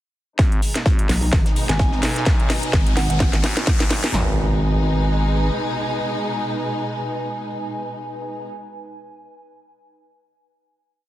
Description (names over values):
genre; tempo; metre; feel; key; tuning
bass house; 128 BPM; 4/4; swing 56% on 16ths; G# minor; A4 = 440 Hz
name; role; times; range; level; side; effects
warm symphonic string section; sustained chords; 0.4-8.5 s; B2 to D#4; -28 LUFS; equal; sidechain pumping, low-pass filter
growling FM bass; bass; 0.4-5.5 s; G#1 to B1; -22 LUFS; equal; tube saturation, sidechain pumping, high-pass filter
big-room dance drum kit; drums; 0.4-4.3 s; handclaps, kick drum, snare drum; -18 LUFS; equal; overdrive, small room reverb
damped 70s drum kit; drums; 0.4-4.0 s; hi-hat, snare drum; -36 LUFS; left 2 dB; none
garage drum kit; drums; 0.4-4.1 s; hi-hat, snare drum; -24 LUFS; equal; small room reverb
riser and impact; sound effects; 1.3-8.5 s; none; -31 LUFS; equal; none
airy breathy pad; texture; 0.4-8.6 s; D#4 to G#5; -29 LUFS; equal; chorus, sidechain pumping
pulsing pluck wobble bass; bass; 1.1-3.4 s; G#1 to B1; -21 LUFS; equal; chorus, tube saturation, sidechain pumping
soft synth bell; melody; 1.7-3.2 s; F#5 to G#5; -32 LUFS; right 3 dB; chorus, phaser, digital delay
room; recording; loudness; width
light reverb; dense, heavily limited modern master; -18 LUFS; side -14 dB against mid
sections
0.4-4.1 build; 4.1-7.9 final chord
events
build-up 0.4-4.1; drum fill 0.4-4.1; filter sweep on string section 0.4-4.1; riser 1.3-4.1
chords
0.4 G#m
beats
| 0.39 0.86 1.33 1.80 | 2.27 2.73 3.20 3.67 | 4.14 4.61 5.08 5.55 | 6.01 6.48 6.95 7.42